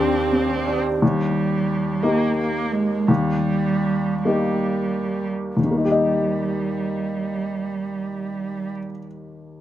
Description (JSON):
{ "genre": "neoclassical piano and strings", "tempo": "43-60 BPM (dotted quarters)", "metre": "6/8", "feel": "rubato", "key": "Eb major", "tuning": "A4 = 440 Hz", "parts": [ { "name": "warm cello", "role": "second line", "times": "0.0-8.7 s", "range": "G3 to C4", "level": "-24 LUFS", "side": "right 4 dB", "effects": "slapback echo" }, { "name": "warm upright piano", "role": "accompaniment", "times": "0.0-9.6 s", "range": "Eb2 to Eb5", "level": "-22 LUFS", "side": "left 2 dB", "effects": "slapback echo" }, { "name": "warm viola", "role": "accompaniment", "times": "0.0-0.8 s", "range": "D4", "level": "-30 LUFS", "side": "right 2 dB", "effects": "slapback echo" }, { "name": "warbly tape-like pad", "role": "sustained chords", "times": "0.0-1.0 s", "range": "none", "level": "barely audible", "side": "none", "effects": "none" }, { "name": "vibraphone with medium hard mallets", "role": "arpeggios", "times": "0.0-1.0 s", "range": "C4 to G4", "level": "-27 LUFS", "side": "right 6 dB", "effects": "slapback echo" }, { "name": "rich double bass", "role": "bass", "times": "0.0-1.0 s", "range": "Eb2", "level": "-32 LUFS", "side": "left 1 dB", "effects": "none" } ], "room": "light reverb", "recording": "recorded outdoors, with no room sound", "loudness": "-20 LUFS", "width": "side -12 dB against mid", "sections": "0.0-1.0 A section; 1.0-5.6 B section; 5.6-9.6 C section", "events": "slowing down 0.0-5.6", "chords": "0.0 Cmadd9/Eb; 1.0 Eb" }